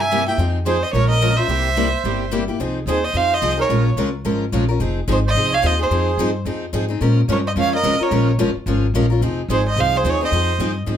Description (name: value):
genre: acoustic string swing (jazz manouche)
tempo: 217 BPM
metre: 4/4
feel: swing 58% on 8ths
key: F minor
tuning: A4 = 439 Hz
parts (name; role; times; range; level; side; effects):
- warm violin; melody; 0.0-10.7 s; C5 to Ab5; -20 LUFS; right 2 dB; none
- accordion; second line; 0.0-10.7 s; Ab4 to E5; -26 LUFS; right 6 dB; none
- picked steel-string acoustic guitar; accompaniment; 0.0-11.0 s; C3 to Bb4; -24 LUFS; left 6 dB; none
- picked steel-string acoustic guitar; accompaniment; 0.0-11.0 s; C3 to Bb4; -26 LUFS; right 7 dB; none
- upright bass; bass; 0.0-11.0 s; F1 to Bb2; -21 LUFS; equal; none
room: moderate studio ambience, RT60 0.5 s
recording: none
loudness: -16 LUFS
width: side -9 dB against mid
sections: 0.0-2.6 A section; 2.6-11.0 A section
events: none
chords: 0.4 Fm7; 0.9 Bbm7; 1.5 C7; 2.6 Fm7; 3.7 Bbm7; 4.8 Fm7; 7.0 Bbm7; 9.2 Fm7